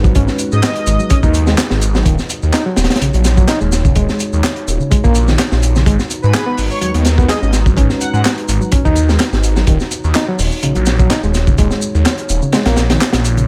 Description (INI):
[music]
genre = breakbeat, breaks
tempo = 126 BPM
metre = 4/4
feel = swing 54% on 16ths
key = unclear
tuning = A4 = 440 Hz
[part]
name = dark analog pad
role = sustained chords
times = 0.0-13.4 s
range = G#3 to A#5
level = -27 LUFS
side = equal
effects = chorus, vintage 12-bit sampler grit, sidechain pumping
[part]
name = overdriven reed electric piano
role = riff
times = 0.0-13.5 s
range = C#3 to G#4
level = -22 LUFS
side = equal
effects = fast tremolo, tube saturation, dub echo
[part]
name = phased detuned saw bass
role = bass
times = 0.0-13.5 s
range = D#1 to G#2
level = -17 LUFS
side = equal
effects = phaser
[part]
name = crunchy breakbeat drum kit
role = drums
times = 0.0-13.5 s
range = hi-hat, kick drum, snare drum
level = -18 LUFS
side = equal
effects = none
[part]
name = electronic shaker and handclaps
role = drums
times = 0.0-13.5 s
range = none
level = -27 LUFS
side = equal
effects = none
[part]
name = airy dreamy lead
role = melody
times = 0.5-1.2, 6.2-8.2 s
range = B4 to F#5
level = -27 LUFS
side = equal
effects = chorus, old record sound, cassette tape, dub echo
[sound]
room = little or no reverb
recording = none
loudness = -14 LUFS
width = mono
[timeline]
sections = 0.0-13.5 A section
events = drop 0.0-13.5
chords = 0.0 G#m7; 2.1 D#m7; 5.9 G#m7; 9.7 D#m7